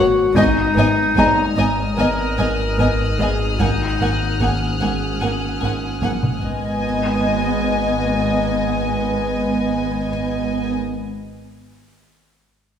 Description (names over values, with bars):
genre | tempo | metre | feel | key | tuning
cinematic, suspense film score | 74 BPM | 4/4 | straight | G# minor | A4 = 440 Hz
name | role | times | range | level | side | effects
warm studio violin section | melody | 0.0-10.7 s | G#5 | -28 LUFS | left 4 dB | none
clear clarinet | second line | 0.0-10.7 s | G#3 to A#4 | -23 LUFS | left 2 dB | none
warm symphonic violin section | second line | 0.0-10.7 s | D#5 to F#5 | -26 LUFS | left 1 dB | none
dark symphonic viola section | accompaniment | 0.0-10.7 s | A#3 to B3 | -24 LUFS | right 1 dB | none
rich symphonic double bass section | bass | 0.0-10.7 s | G#1 | -28 LUFS | right 2 dB | none
warm studio cello section | bass | 0.0-10.7 s | G#2 | -25 LUFS | right 2 dB | none
analog drone | drone | 0.0-10.7 s | G#1 | -27 LUFS | equal | chorus
taiko ensemble | drums | 0.3-8.0 s | none | -26 LUFS | equal | none
rich symphonic violin section | texture | 0.3-9.6 s | D#6 to G#6 | -30 LUFS | left 3 dB | none
felt-muted upright piano | texture | 1.2-3.6 s | A#5 | -25 LUFS | equal | none
room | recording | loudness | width
wet scoring stage reverb, RT60 1.7 s | heard from further back in the room | -17 LUFS | side -8 dB against mid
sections
0.0-6.8 A section; 6.8-10.1 B section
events
drum fill 6.0-6.8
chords
0.3 G#m; 3.6 F#add9/G#; 6.4 G#m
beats
| 0.34 1.16 1.97 2.78 | 3.59 4.40 5.21 6.02 | 6.83 7.64 8.45 9.26